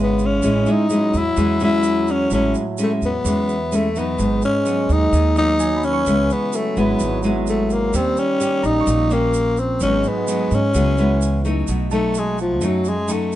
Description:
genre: bossa nova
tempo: 128 BPM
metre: 4/4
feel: straight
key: C# minor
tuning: A4 = 440 Hz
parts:
  - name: growling tenor saxophone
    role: melody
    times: 0.0-13.4 s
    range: E#3 to E4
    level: -20 LUFS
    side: left 2 dB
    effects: none
  - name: growling trombone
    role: second line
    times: 0.0-11.7 s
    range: C#3 to G#3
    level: -27 LUFS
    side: right 6 dB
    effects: none
  - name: bell-like tine electric piano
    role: accompaniment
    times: 0.0-0.5, 5.6-13.4 s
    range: D#5 to C#6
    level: -32 LUFS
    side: right 6 dB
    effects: medium stereo tremolo
  - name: nylon-string guitar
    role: accompaniment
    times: 0.0-13.4 s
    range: F#2 to G4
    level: -21 LUFS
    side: equal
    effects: none
  - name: upright bass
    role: bass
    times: 0.0-13.4 s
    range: G#1 to G#2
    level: -23 LUFS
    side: right 1 dB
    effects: none
  - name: tube shaker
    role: percussion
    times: 0.2-13.4 s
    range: none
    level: -35 LUFS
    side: right 9 dB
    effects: none
room: little or no reverb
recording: nothing above 10.6 kHz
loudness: -16 LUFS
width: side -13 dB against mid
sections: 0.0-11.7 A section; 11.7-13.4 B section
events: tenor saxophone solo 11.7-13.4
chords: 0.4 Amaj7; 4.2 G#m7; 6.1 C#m7; 7.9 D#7; 9.8 G#m7; 10.7 C#m7; 11.7 B7

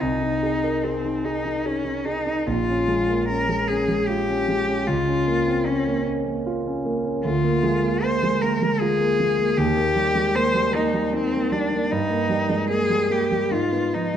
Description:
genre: classical, romantic duo for cello and grand piano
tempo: 75 BPM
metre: 3/4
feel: rubato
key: Eb major from 7.2 s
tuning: A4 = 439 Hz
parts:
  - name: rich cello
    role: melody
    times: 0.0-14.2 s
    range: C4 to C5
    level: -23 LUFS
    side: left 2 dB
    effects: none
  - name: warm concert grand piano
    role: accompaniment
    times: 0.0-14.2 s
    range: Bb1 to Bb4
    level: -23 LUFS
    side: right 1 dB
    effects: none
room: moderate scoring stage reverb, RT60 1.8 s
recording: dark, warm production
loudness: -20 LUFS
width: side -9 dB against mid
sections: 0.0-14.2 A section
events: none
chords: 0.0 Ab/C; 2.5 Bbm7; 4.9 Bbm/Db; 7.2 Bb7/D; 9.6 Eb; 11.9 Eb/G; 13.5 Fm7b5/Ab

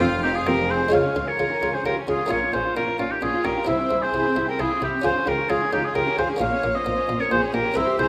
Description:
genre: classical, baroque-style concerto movement with solo episodes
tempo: 132 BPM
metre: 3/4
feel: straight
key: unclear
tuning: A4 = 441 Hz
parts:
  - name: clear oboe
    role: melody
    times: 0.0-8.1 s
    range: F4 to F5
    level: -26 LUFS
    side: equal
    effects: none
  - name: rich chamber violin section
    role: melody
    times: 0.0-8.1 s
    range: Db5 to C6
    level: -41 LUFS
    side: equal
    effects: none
  - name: rich studio violin section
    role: second line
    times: 0.0-8.1 s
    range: Db4 to Db5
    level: -31 LUFS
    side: equal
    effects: none
  - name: buff-stop harpsichord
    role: accompaniment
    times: 0.0-8.1 s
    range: F2 to Bb4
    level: -29 LUFS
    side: equal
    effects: none
  - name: clear symphonic viola section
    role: accompaniment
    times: 0.0-8.1 s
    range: Bb3 to G4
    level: -31 LUFS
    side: equal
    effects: none
  - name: rich chamber cello section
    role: bass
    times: 0.0-8.1 s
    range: F2 to Db3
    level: -39 LUFS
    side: equal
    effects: none
  - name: rich chamber double bass section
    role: bass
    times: 0.0-8.1 s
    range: F1 to Db2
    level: -36 LUFS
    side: equal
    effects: none
room: wet recital hall reverb, RT60 1.6 s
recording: none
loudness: -23 LUFS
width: mono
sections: 0.9-8.1 A section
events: none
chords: 0.0 Fm; 0.9 Db; 2.3 Bbm; 3.7 C; 5.0 Db; 6.4 Bbm

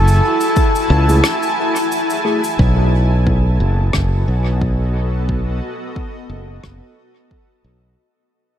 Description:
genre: ambient dub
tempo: 89 BPM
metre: 4/4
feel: swing 56% on 16ths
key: unclear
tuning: A4 = 440 Hz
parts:
  - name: trumpet with cup mute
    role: melody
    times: 0.0-1.9 s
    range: A4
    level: -22 LUFS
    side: left 1 dB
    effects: dub echo
  - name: granular cloud pad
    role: sustained chords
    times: 0.0-8.0 s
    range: B3 to A5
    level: -21 LUFS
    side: equal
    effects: built-in reverb
  - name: modern bright fingered electric bass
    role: bass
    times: 0.0-7.9 s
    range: F#1 to C#2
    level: -15 LUFS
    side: equal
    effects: none
  - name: cabasa and rim click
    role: drums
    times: 0.1-6.8 s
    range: none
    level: -24 LUFS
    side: left 1 dB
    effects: dub echo
  - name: electronic kick drum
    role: drums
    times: 0.6-7.5 s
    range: none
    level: -19 LUFS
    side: equal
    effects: overdrive
  - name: mellow tine electric piano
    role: stabs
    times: 1.1-2.4 s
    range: A3 to G#4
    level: -25 LUFS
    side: left 1 dB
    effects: dub echo
room: light reverb, small room ambience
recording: none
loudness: -13 LUFS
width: side -10 dB against mid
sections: 0.0-2.6 A section; 2.6-8.0 B section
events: break 1.2-2.6; fade-out 2.6-8.0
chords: 0.0 F#m9; 2.6 B7

